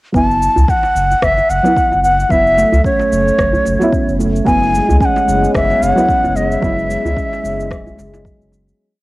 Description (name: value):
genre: organic downtempo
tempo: 111 BPM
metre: 4/4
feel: swing 56% on 16ths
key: F# minor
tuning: A4 = 440 Hz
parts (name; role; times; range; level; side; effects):
- deep mellow chord stab; accompaniment; 0.1-8.8 s; F#3 to E4; -20 LUFS; right 1 dB; chorus, cassette tape, sidechain pumping
- warm sub bass; bass; 0.1-8.7 s; E1 to C#2; -18 LUFS; equal; sidechain pumping
- electronic kick drum; drums; 0.1-8.4 s; none; -20 LUFS; equal; overdrive, cassette tape
- bansuri; melody; 0.2-8.3 s; C#5 to A5; -14 LUFS; equal; cassette tape, tape echo
- electronic cabasa and rim click; drums; 0.2-8.8 s; none; -24 LUFS; equal; overdrive, cassette tape
- djembe; percussion; 0.6-8.6 s; none; -24 LUFS; right 1 dB; none
- handpan; arpeggios; 2.3-8.8 s; F#3 to C#4; -20 LUFS; right 1 dB; tape echo
- warbly tape-like pad; sustained chords; 5.0-8.8 s; B3 to C#5; -25 LUFS; equal; chorus, built-in reverb, sidechain pumping
room: moderate spring reverb, RT60 1.5 s, small room ambience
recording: home recording on cassette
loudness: -11 LUFS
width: side -19 dB against mid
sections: 0.1-8.8 groove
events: fade-out 5.9-8.8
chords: 0.1 F#m7; 4.5 C#m7/F#